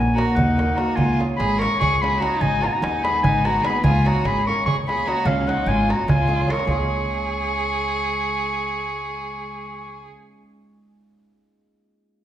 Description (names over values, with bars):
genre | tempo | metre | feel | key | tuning
balkan folk, Balkan wedding band | 296 BPM (eighths) | 7/8 | straight | Db mixolydian | A4 = 440 Hz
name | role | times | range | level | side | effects
warm clarinet | melody | 0.0-10.1 s | F5 to Db6 | -23 LUFS | left 3 dB | none
upright bass | bass | 0.0-10.1 s | Ab1 to Eb2 | -25 LUFS | equal | none
rich violin | second line | 0.1-10.1 s | Db4 to Bb4 | -27 LUFS | right 4 dB | none
darbuka | percussion | 0.1-6.9 s | none | -25 LUFS | right 1 dB | none
cimbalom | accompaniment | 0.2-11.2 s | Ab3 to Bb4 | -27 LUFS | right 1 dB | none
room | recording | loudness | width
wet recital hall reverb, RT60 1.4 s | recorded in a church or concert hall | -18 LUFS | side -11 dB against mid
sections
0.0-6.7 A section; 6.7-9.5 B section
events
drum fill 6.3-6.7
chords
0.0 Ebm; 1.0 Db; 2.4 Abm; 3.8 Db